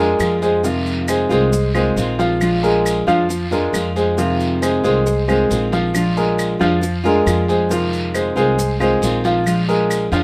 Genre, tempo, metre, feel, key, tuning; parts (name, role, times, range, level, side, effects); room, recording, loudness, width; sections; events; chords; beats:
latin, Cuban son and guajira; 136 BPM; 4/4; straight; A4 = 440 Hz
nylon-string guitar; accompaniment; 0.0-10.2 s; C3 to F4; -23 LUFS; equal
warm concert grand piano; arpeggios; 0.0-10.2 s; F3 to F5; -20 LUFS; equal
upright bass; bass; 0.0-10.2 s; Bb1 to F2; -26 LUFS; equal
claves; percussion; 0.2-10.1 s; -31 LUFS; equal
guiro; percussion; 0.2-10.2 s; -34 LUFS; equal
maracas; percussion; 0.2-10.2 s; -35 LUFS; equal
moderate studio reverb, RT60 0.5 s; -17 LUFS; mono
0.0-10.2 A section
0.0 Bb7; 0.6 Fm7; 2.4 Bb7; 4.2 Fm7; 5.9 Bb7; 7.7 Fm7; 9.5 Bb7
0.20 | 0.64 1.08 1.52 1.97 | 2.41 2.85 3.29 3.74 | 4.18 4.62 5.06 5.50 | 5.94 6.38 6.82 7.26 | 7.70 8.14 8.58 9.02 | 9.46 9.90